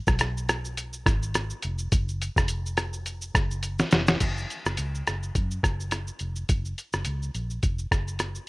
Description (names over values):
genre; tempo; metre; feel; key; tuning
indie pop, bedroom pop; 105 BPM; 4/4; swing 55% on 16ths; unclear; A4 = 440 Hz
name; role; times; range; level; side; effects
vintage muted fingered electric bass; bass; 0.1-8.4 s; E#1 to F#2; -31 LUFS; equal; none
lo-fi sampler-style drum kit; drums; 0.1-8.5 s; crash cymbal, hi-hat, kick drum, rim click, shaker, snare drum; -24 LUFS; equal; none
room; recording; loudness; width
little or no reverb; rough home demo mix; -25 LUFS; side -24 dB against mid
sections
0.0-4.2 A section; 4.2-8.5 B section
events
drum fill 3.6-4.2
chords
none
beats
0.21 0.78 1.35 | 1.92 2.49 3.06 3.63 | 4.21 4.78 5.35 5.92 | 6.49 7.06 7.63 8.21